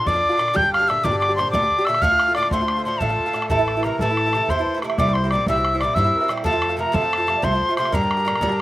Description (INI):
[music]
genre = celtic folk, Celtic slip jig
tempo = 122 BPM (dotted quarters)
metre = 9/8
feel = straight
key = G dorian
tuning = A4 = 440 Hz
[part]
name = mellow tin whistle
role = melody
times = 0.0-8.6 s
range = A5 to G6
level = -20 LUFS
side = left 1 dB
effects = none
[part]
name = Irish bouzouki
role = accompaniment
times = 0.0-8.6 s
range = A2 to G4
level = -25 LUFS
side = right 3 dB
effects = slapback echo
[part]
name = accordion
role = second line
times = 0.1-8.6 s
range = A4 to G5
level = -27 LUFS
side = left 2 dB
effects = none
[part]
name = upright bass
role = bass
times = 0.1-8.6 s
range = G1 to G2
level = -26 LUFS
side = equal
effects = none
[part]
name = bodhran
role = percussion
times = 0.1-8.5 s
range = none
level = -28 LUFS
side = right 1 dB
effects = none
[sound]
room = little or no reverb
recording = recorded outdoors, with no room sound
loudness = -17 LUFS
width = side -16 dB against mid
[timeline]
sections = 0.0-8.6 A section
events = none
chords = 0.0 Bb; 0.6 Gm; 2.0 Dm; 3.5 Am; 5.0 C7; 6.5 F; 7.9 Gm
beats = 0.06 | 0.55 1.04 1.53 | 2.02 2.52 3.01 | 3.50 3.99 4.48 | 4.97 5.47 5.96 | 6.45 6.94 7.43 | 7.92 8.42